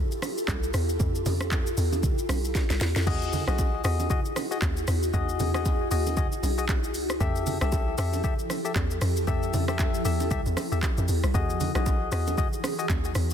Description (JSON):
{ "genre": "amapiano", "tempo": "116 BPM", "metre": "4/4", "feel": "swing 58% on 16ths", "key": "E major", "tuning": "A4 = 440 Hz", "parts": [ { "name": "ethereal airy pad", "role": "sustained chords", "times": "0.0-13.3 s", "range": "E3 to A4", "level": "-32 LUFS", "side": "equal", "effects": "ensemble chorus, built-in reverb, sidechain pumping" }, { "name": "afro-pop drum kit", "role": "drums", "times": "0.1-13.3 s", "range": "crash cymbal, handclaps, hi-hat, kick drum, rim click, shaker, snare drum", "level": "-29 LUFS", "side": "equal", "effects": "none" }, { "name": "bongos and congas", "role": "percussion", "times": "0.2-13.0 s", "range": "none", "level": "-35 LUFS", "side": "right 6 dB", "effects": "none" }, { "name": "hollow log drum bass", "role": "bass", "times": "0.5-13.3 s", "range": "B1 to F2", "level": "-28 LUFS", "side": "equal", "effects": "none" }, { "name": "percussive organ stab", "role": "stabs", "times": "3.1-12.9 s", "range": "F#4 to E5", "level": "-32 LUFS", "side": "left 8 dB", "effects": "chorus, ping-pong delay" } ], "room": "little or no reverb", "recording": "dense, heavily limited modern master", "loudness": "-24 LUFS", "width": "side -8 dB against mid", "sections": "0.0-13.3 A section", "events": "drum fill 2.6-3.1", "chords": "0.0 Fmaj9; 3.1 Emaj9; 7.2 Fmaj9; 11.3 Emaj9", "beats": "0.48 | 1.00 1.52 2.03 2.55 | 3.07 3.59 4.10 4.62 | 5.14 5.66 6.17 6.69 | 7.21 7.72 8.24 8.76 | 9.28 9.79 10.31 10.83 | 11.35 11.86 12.38 12.90" }